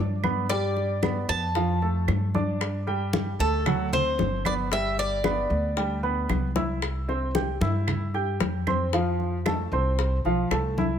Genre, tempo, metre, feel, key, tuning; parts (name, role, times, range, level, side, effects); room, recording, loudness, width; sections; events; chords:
latin, Cuban son and guajira; 114 BPM; 4/4; straight; C major; A4 = 441 Hz
Cuban tres; melody; 0.0-6.0 s; A4 to A5; -29 LUFS; left 1 dB
warm baby grand piano; arpeggios; 0.0-11.0 s; F3 to G6; -28 LUFS; right 2 dB
upright bass; bass; 0.0-11.0 s; G1 to G2; -28 LUFS; equal
bongos; percussion; 0.2-11.0 s; -33 LUFS; left 7 dB
claves; percussion; 0.2-10.8 s; -35 LUFS; right 9 dB
congas; percussion; 0.2-11.0 s; -30 LUFS; left 2 dB
light reverb; -23 LUFS; side -8 dB against mid
0.0-6.8 A section; 6.8-11.0 B section
drum fill 6.3-6.8
0.0 N.C.; 0.5 G; 1.6 F; 2.6 G5; 3.7 D7; 4.7 G; 6.8 C; 8.9 Fmaj7